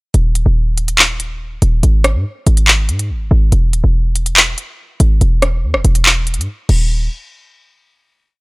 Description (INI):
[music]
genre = hip hop, drill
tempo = 142 BPM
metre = 4/4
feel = half-time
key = unclear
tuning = A4 = 440 Hz
[part]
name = short 808-style bass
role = bass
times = 0.1-7.1 s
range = Eb1 to Ab2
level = -13 LUFS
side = equal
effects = none
[part]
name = drill drum kit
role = drums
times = 0.1-6.8 s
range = crash cymbal, handclaps, hi-hat, rim click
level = -12 LUFS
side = equal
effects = vintage 12-bit sampler grit
[sound]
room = little or no reverb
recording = dry, gritty hardware recording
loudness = -11 LUFS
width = side -28 dB against mid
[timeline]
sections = 0.1-6.9 hook; 6.9-8.4 final hit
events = break 6.5-6.9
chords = none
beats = | 0.14 0.56 0.99 1.41 | 1.83 2.25 2.68 3.10 | 3.52 3.94 4.37 4.79 | 5.21 5.63 6.06 6.48 | 6.90